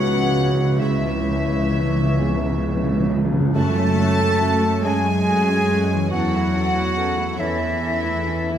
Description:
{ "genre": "cinematic, emotional film score for orchestra", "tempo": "43-47 BPM (dotted quarters)", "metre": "6/8", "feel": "rubato", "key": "F# minor", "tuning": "A4 = 440 Hz", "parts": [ { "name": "warm symphonic violin section", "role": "melody", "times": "0.0-8.6 s", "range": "C#4 to F#5", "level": "-34 LUFS", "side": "left 2 dB", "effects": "none" }, { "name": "silver concert flute", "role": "second line", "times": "0.0-8.6 s", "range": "E5 to A5", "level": "-27 LUFS", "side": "equal", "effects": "none" }, { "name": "warm clarinet", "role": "second line", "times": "0.0-8.6 s", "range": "E4 to B4", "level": "-28 LUFS", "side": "left 1 dB", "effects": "none" }, { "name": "warm oboe", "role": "second line", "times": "0.0-3.2 s", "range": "C#5", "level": "-34 LUFS", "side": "right 3 dB", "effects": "none" }, { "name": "warm symphonic violin section", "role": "second line", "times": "0.0-8.6 s", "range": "E5 to A5", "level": "-30 LUFS", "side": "left 2 dB", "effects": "none" }, { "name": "dark symphonic viola section", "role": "accompaniment", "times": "0.0-8.6 s", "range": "E3 to E4", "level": "-33 LUFS", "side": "right 3 dB", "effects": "none" }, { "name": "felt-muted upright piano", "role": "accompaniment", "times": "0.0-8.6 s", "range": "C#2 to C#5", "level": "-31 LUFS", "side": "left 1 dB", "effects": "none" }, { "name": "dark French horn section", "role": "sustained chords", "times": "0.0-8.6 s", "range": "E3 to F#4", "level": "-28 LUFS", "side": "left 4 dB", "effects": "none" }, { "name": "concert harp", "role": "arpeggios", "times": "0.0-8.6 s", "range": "F#2 to B5", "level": "-32 LUFS", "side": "left 6 dB", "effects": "none" }, { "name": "dark chamber double bass section", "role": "bass", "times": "0.0-8.6 s", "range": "C#2 to F#2", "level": "-24 LUFS", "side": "right 2 dB", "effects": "none" }, { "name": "warm symphonic cello section", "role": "bass", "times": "0.0-8.6 s", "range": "C#2 to A3", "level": "-26 LUFS", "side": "right 2 dB", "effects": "none" }, { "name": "timpani", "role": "percussion", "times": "0.0-3.5 s", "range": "C#3", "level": "-23 LUFS", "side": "right 1 dB", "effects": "none" } ], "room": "wet scoring stage reverb, RT60 1.8 s", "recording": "none", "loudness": "-17 LUFS", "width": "side -9 dB against mid", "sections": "0.0-3.5 A section; 3.5-8.6 B section", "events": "timpani fill 0.0-3.5", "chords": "0.0 C#m7; 3.5 F#m; 6.1 A/E" }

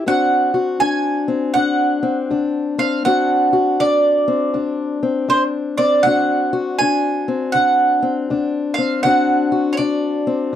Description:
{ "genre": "acoustic country blues, solo or duo", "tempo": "80 BPM", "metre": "4/4", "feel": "swing 63% on 8ths", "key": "D mixolydian", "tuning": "A4 = 440 Hz", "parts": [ { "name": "fingerpicked steel-string acoustic guitar", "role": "accompaniment", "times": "0.0-10.6 s", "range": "D2 to F#4", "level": "-19 LUFS", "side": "left 4 dB", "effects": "none" }, { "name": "mandolin", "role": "melody", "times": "0.1-10.6 s", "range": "C5 to G#5", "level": "-17 LUFS", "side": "right 3 dB", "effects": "none" } ], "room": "little or no reverb", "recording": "dry, close 1970s-style studio recording", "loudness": "-15 LUFS", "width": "side -10 dB against mid", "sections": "0.1-10.6 A section", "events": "none", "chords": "0.1 D7" }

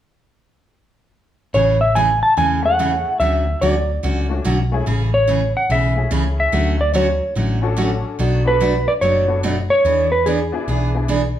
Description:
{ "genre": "country, western swing", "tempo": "144 BPM", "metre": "4/4", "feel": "swing 65% on 8ths", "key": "A major", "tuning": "A4 = 441 Hz", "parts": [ { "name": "clean lap steel guitar", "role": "melody", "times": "1.5-10.6 s", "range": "G#4 to A5", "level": "-17 LUFS", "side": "equal", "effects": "none" }, { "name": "picked steel-string acoustic guitar", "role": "accompaniment", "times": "1.5-11.2 s", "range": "B2 to G#4", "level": "-22 LUFS", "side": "right 2 dB", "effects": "none" }, { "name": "hollow-body short-scale picked electric bass", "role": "bass", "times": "1.5-11.3 s", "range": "F#1 to E2", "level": "-20 LUFS", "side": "left 1 dB", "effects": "none" }, { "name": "honky-tonk upright piano", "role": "accompaniment", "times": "2.6-11.1 s", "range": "A3 to A4", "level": "-27 LUFS", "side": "left 5 dB", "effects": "none" } ], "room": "moderate large studio reverb, RT60 0.9 s", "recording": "band playing live in one room", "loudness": "-15 LUFS", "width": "side -11 dB against mid", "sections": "1.5-4.9 A section; 4.9-11.4 B section", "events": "none", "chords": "1.5 Amaj7; 3.2 Dmaj7; 4.9 Amaj7; 6.5 Dmaj7; 8.2 Bm7; 9.8 E7" }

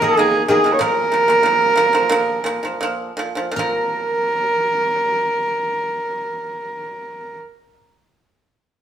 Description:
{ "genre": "mongolian traditional, Mongolian folk", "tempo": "78-100 BPM", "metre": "4/4", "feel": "straight", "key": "Bb yu mode", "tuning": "A4 = 440 Hz", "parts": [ { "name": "rich horsehead fiddle", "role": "melody", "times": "0.0-7.4 s", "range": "Ab4 to Db5", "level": "-17 LUFS", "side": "right 2 dB", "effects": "none" }, { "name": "steel-string zither", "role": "second line", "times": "0.0-7.8 s", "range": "F4 to Db5", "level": "-23 LUFS", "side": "right 1 dB", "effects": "none" }, { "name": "pipa", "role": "arpeggios", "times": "0.0-7.8 s", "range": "Bb2 to Bb3", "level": "-22 LUFS", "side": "right 1 dB", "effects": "none" } ], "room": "wet stone room reverb, RT60 1.0 s", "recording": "band playing live in one room", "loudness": "-16 LUFS", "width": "side -9 dB against mid", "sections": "0.0-3.5 A section; 3.5-6.6 B section", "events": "slowing down 0.0-3.5", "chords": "0.0 Eb5; 0.8 Bb5" }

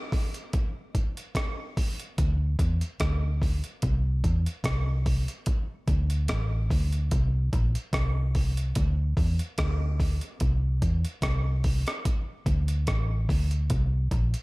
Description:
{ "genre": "dub reggae", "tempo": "73 BPM", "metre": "4/4", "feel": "swing 55% on 16ths", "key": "unclear", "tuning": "A4 = 439 Hz", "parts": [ { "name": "breakbeat sampler-style drum kit", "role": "drums", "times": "0.1-14.4 s", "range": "hi-hat, kick drum, rim click", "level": "-28 LUFS", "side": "equal", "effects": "overdrive" }, { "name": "vintage muted fingered electric bass", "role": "bass", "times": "2.2-14.3 s", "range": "A1 to E2", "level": "-25 LUFS", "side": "equal", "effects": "none" } ], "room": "little or no reverb", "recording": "none", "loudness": "-24 LUFS", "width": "side -24 dB against mid", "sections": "0.0-14.4 A section", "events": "break 0.0-2.2", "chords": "none" }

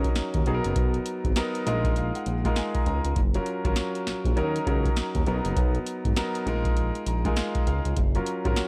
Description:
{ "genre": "R&B, new jack swing", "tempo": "100 BPM", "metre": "4/4", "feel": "swing 62% on 16ths", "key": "unclear", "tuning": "A4 = 442 Hz", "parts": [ { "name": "warm concert grand piano", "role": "accompaniment", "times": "0.0-8.7 s", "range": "F#3 to A#5", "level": "-31 LUFS", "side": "equal", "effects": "none" }, { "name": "smooth synth bass", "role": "bass", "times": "0.0-8.5 s", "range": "F#1 to D#2", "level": "-30 LUFS", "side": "equal", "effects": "none" }, { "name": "booming analog drum machine", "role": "drums", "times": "0.0-8.7 s", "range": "hi-hat, kick drum, snare drum", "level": "-28 LUFS", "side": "equal", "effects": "none" } ], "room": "little or no reverb", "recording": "none", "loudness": "-26 LUFS", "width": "mono", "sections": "0.0-8.7 A section", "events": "grand piano fill 1.4-3.2, 6.8-8.0", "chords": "0.5 Bmaj7; 1.7 A#7sus4; 3.2 F#maj7; 4.4 D#m7; 5.3 Bmaj7; 6.5 A#7sus4; 8.0 F#maj7" }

